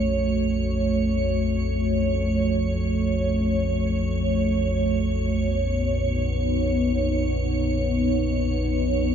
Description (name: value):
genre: dark ambient drone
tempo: free time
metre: none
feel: none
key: unclear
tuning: A4 = 439 Hz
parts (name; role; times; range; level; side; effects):
- dark analog pad; sustained chords; 0.0-9.1 s; A3 to Db5; -24 LUFS; right 1 dB; chorus
- deep rumbling drone; drone; 0.0-9.1 s; Bb1 to F2; -25 LUFS; left 1 dB; built-in reverb, lush chorus
- icy glass pad; texture; 0.0-9.1 s; Db5; -34 LUFS; right 3 dB; chorus, built-in reverb
room: moderate lush hall reverb, RT60 2.7 s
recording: dreamy mix soaked in reverb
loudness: -21 LUFS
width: side -8 dB against mid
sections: 0.0-9.1 A section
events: none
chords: 0.0 Gbm; 5.3 Badd9